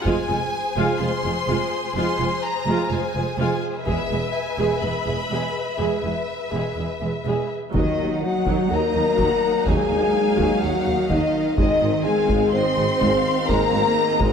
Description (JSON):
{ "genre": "cinematic, epic orchestral film score", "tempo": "126 BPM", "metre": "4/4", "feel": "straight", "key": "Eb dorian", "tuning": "A4 = 440 Hz", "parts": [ { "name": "clear studio violin section", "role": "melody", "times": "0.0-14.3 s", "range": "Eb5 to C6", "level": "-30 LUFS", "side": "left 2 dB", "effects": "none" }, { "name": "warm symphonic violin section", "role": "second line", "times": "0.0-14.3 s", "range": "Ab4 to C6", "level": "-26 LUFS", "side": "left 3 dB", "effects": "none" }, { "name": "warm studio viola section", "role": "accompaniment", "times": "0.0-14.3 s", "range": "Gb3 to G#4", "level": "-27 LUFS", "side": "right 2 dB", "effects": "none" }, { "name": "rich chamber double bass section", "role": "bass", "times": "0.1-14.3 s", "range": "E1 to Eb2", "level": "-29 LUFS", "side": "right 4 dB", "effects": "none" }, { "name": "warm symphonic cello section", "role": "bass", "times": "0.1-14.3 s", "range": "E2 to C4", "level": "-28 LUFS", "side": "right 4 dB", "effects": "none" }, { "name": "taiko ensemble", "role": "drums", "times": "0.1-1.0, 3.9-4.8, 7.7-14.3 s", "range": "none", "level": "-27 LUFS", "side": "equal", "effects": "none" }, { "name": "warm French horn section", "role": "sustained chords", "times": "7.7-14.3 s", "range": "Eb4 to C5", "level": "-22 LUFS", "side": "left 5 dB", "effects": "none" }, { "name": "warm tuba", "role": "bass", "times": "7.7-14.3 s", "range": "Ab1 to Eb2", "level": "-29 LUFS", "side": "right 3 dB", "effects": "none" }, { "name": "clear trombone section", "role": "sustained chords", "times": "7.8-14.3 s", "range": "Eb3 to Bb3", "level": "-30 LUFS", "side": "right 4 dB", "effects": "none" } ], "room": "moderate scoring stage reverb, RT60 1.9 s", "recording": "none", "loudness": "-19 LUFS", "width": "side -7 dB against mid", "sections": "0.0-7.7 A section; 7.7-14.3 A section", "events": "none", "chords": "0.1 Fm; 3.9 E; 7.7 Ebm; 11.6 Ab", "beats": "| 0.06 0.53 1.01 1.49 | 1.96 2.44 2.91 3.39 | 3.87 4.35 4.83 5.31 | 5.79 6.28 6.77 7.25 | 7.74 8.23 8.71 9.19 | 9.67 10.15 10.63 11.11 | 11.59 12.06 12.54 13.02 | 13.49 13.97" }